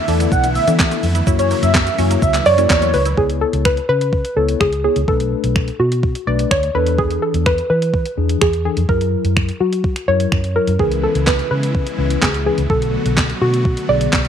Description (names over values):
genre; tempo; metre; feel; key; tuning
dance-pop; 126 BPM; 4/4; straight; unclear; A4 = 440 Hz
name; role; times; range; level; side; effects
airy dreamy lead; melody; 0.0-3.0 s; C#5 to F#5; -19 LUFS; right 1 dB; chorus, slapback echo
supersaw chords; sustained chords; 0.0-3.2, 10.8-14.3 s; C#3 to F#4; -26 LUFS; right 1 dB; sidechain pumping
mellow tine electric piano; accompaniment; 0.1-14.2 s; D3 to E5; -23 LUFS; left 14 dB; sidechain pumping
resonant blip pluck; arpeggios; 0.1-3.2 s; E3 to E4; -28 LUFS; right 13 dB; phaser, sidechain pumping, slapback echo
vintage muted fingered electric bass; bass; 0.1-14.3 s; B1 to F#3; -20 LUFS; right 1 dB; sidechain pumping
gated 80s digital drum machine; drums; 0.1-14.3 s; finger snaps, handclaps, hi-hat, kick drum, shaker, snare drum; -18 LUFS; right 1 dB; gated reverb, gated reverb snare, overdrive
soft round pluck; melody; 2.5-14.3 s; F#4 to D5; -18 LUFS; right 1 dB; chorus, slapback echo
room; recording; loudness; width
light reverb, digital ambience; 1960s-style stereo with parts hard left and right; -14 LUFS; side -8 dB against mid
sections
0.0-3.2 A section; 3.2-14.3 B section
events
drop 0.0-3.2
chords
0.0 E7sus4; 1.3 F#7; 3.2 C#m7; 5.1 Bm7; 6.7 E7sus4; 8.9 F#7; 10.8 C#m7; 12.7 Bm7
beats
0.32 0.80 | 1.27 1.75 2.22 2.70 | 3.18 3.65 4.13 4.60 | 5.08 5.56 6.03 6.51 | 6.99 7.46 7.94 8.41 | 8.89 9.37 9.84 10.32 | 10.79 11.27 11.75 12.22 | 12.70 13.18 13.65 14.13